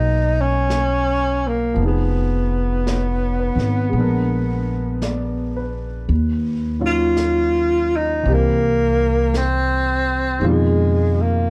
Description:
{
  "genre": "jazz ballad",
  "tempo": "56 BPM",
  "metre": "4/4",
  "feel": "swing 66% on 8ths",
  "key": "Eb minor",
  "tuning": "A4 = 439 Hz",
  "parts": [
    { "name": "breathy tenor saxophone", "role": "melody", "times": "0.0-11.5 s", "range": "Ab3 to F4", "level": "-22 LUFS", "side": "equal", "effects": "plate reverb" },
    { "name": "warm concert grand piano", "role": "accompaniment", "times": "0.0-11.5 s", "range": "Cb3 to D5", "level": "-29 LUFS", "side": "equal", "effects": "none" },
    { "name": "upright bass", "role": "bass", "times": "0.0-11.5 s", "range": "F1 to F2", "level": "-23 LUFS", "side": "equal", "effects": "none" },
    { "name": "vintage brush drum kit", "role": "drums", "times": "0.7-11.5 s", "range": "brushed snare drum, hi-hat, snare drum", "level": "-35 LUFS", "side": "equal", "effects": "none" }
  ],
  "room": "light reverb",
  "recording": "dark, warm production",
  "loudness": "-19 LUFS",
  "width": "mono",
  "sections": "0.0-11.5 A section",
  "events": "none",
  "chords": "0.0 Abm9; 1.8 Fm7b5; 3.9 Bb7b9; 6.1 Ebm9; 8.3 C7; 10.4 Fm7b5"
}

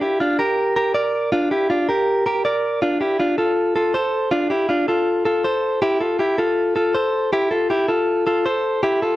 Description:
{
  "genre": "indie pop",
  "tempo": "160 BPM",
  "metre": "4/4",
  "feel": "straight",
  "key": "F major",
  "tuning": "A4 = 440 Hz",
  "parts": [
    { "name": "direct-recorded clean electric guitar", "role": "solo", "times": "0.0-9.2 s", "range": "D4 to D5", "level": "-17 LUFS", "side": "equal", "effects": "spring reverb" }
  ],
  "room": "light reverb",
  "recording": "dry, close 1970s-style studio recording",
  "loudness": "-17 LUFS",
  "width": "side -15 dB against mid",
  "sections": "0.0-2.8 A section; 2.8-9.2 B section",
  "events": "none",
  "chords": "0.0 Bb; 2.8 F6; 5.8 C6/E"
}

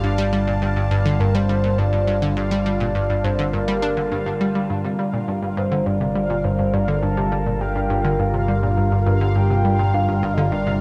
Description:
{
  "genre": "ambient, sequencer-driven space music",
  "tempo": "103 BPM",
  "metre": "4/4",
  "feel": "straight",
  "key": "G minor",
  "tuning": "A4 = 440 Hz",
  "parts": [
    { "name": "soft octave-layered synth lead", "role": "melody", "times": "0.0-10.8 s", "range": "Bb4 to A5", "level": "-28 LUFS", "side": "equal", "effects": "chorus, phaser, tape echo" },
    { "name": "phased analog pad", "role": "sustained chords", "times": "0.0-10.8 s", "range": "D3 to A5", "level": "-27 LUFS", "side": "equal", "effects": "phaser, chorus" },
    { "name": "analog pluck", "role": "riff", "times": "0.0-10.8 s", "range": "G2 to D4", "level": "-25 LUFS", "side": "equal", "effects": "chorus, tape echo" },
    { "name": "analog drone", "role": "bass", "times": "0.0-10.8 s", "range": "G1", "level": "-25 LUFS", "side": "equal", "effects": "chorus" },
    { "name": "bubbling stepped-filter texture", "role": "texture", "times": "0.0-10.8 s", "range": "F5", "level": "-35 LUFS", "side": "equal", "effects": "chorus, built-in reverb" }
  ],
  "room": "wet plate reverb, RT60 2.8 s",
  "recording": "dreamy mix soaked in reverb",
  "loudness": "-20 LUFS",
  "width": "mono",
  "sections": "0.0-10.8 A section",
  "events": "none",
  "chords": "0.0 Gm7"
}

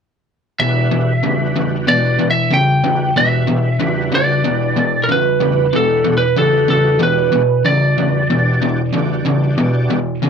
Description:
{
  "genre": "rock",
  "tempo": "94 BPM",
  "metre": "4/4",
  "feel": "straight",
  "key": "E minor",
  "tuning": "A4 = 439 Hz",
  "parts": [
    { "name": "lightly driven lead guitar", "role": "melody", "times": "0.6-9.5 s", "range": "A4 to G5", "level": "-16 LUFS", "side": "right 2 dB", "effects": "slapback echo" },
    { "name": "overdriven tonewheel organ", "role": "sustained chords", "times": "0.6-10.0 s", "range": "E3 to D5", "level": "-25 LUFS", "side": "right 3 dB", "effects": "slow rotary speaker, chorus vibrato" },
    { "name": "raw garage guitar", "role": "riff", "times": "0.6-10.3 s", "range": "E2 to C#3", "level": "-16 LUFS", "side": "left 1 dB", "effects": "overdrive" }
  ],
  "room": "light reverb",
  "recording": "none",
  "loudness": "-13 LUFS",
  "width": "side -6 dB against mid",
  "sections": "0.6-10.3 A section",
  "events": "none",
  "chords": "0.6 Em7"
}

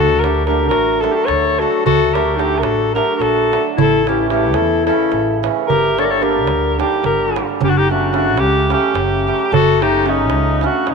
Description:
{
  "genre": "balkan folk, Balkan wedding band",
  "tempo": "219 BPM (eighths)",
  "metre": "7/8",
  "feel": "straight",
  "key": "unclear",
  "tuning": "A4 = 440 Hz",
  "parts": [
    { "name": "warm alto saxophone", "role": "melody", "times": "0.0-10.9 s", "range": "Eb4 to D5", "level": "-17 LUFS", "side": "left 1 dB", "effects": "none" },
    { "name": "warm clarinet", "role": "second line", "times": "0.0-10.9 s", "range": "C#4 to Bb4", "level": "-19 LUFS", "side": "left 12 dB", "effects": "none" },
    { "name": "upright bass", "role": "bass", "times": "0.0-10.9 s", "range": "F#1 to E2", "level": "-22 LUFS", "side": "left 1 dB", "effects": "none" },
    { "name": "darbuka", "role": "percussion", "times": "0.1-10.9 s", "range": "none", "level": "-22 LUFS", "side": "right 10 dB", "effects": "none" },
    { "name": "hammered dulcimer", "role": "accompaniment", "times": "0.2-10.9 s", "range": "C#3 to D4", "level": "-20 LUFS", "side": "right 12 dB", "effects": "none" }
  ],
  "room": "moderate plate reverb, RT60 2.8 s",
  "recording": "1960s-style stereo with parts hard left and right",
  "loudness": "-13 LUFS",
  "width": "side -5 dB against mid",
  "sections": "0.0-7.6 A section; 7.6-10.9 A section",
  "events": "none",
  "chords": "0.0 D; 3.8 A; 5.7 Gm; 7.6 F#m"
}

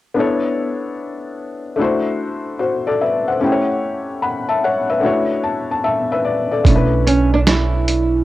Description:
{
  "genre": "lo-fi hip hop",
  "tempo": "74 BPM",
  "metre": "4/4",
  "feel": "swing 65% on 16ths",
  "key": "B minor",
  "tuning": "A4 = 440 Hz",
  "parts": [
    { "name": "felt-muted upright piano", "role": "accompaniment", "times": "0.1-8.2 s", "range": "A3 to B5", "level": "-18 LUFS", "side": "left 2 dB", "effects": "low-pass filter" },
    { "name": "upright bass", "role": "bass", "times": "6.7-8.2 s", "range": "B1", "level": "-17 LUFS", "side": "right 2 dB", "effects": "none" },
    { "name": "lo-fi sampler-style drum kit", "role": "drums", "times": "6.7-8.1 s", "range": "hi-hat, kick drum, snare drum", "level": "-15 LUFS", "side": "right 2 dB", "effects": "cassette tape" },
    { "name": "flamenco guitar", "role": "melody", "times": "7.1-8.2 s", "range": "C#4 to E4", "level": "-17 LUFS", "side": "right 3 dB", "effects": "low-pass filter, cassette tape" }
  ],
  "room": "light reverb",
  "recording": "home recording on cassette",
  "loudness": "-15 LUFS",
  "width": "side -15 dB against mid",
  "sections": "0.2-6.7 A section; 6.7-8.2 B section",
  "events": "felt piano fill 5.0-6.7",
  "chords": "0.2 Bm11; 1.8 D9; 3.4 A7; 5.0 Dmaj9; 6.7 Bm11"
}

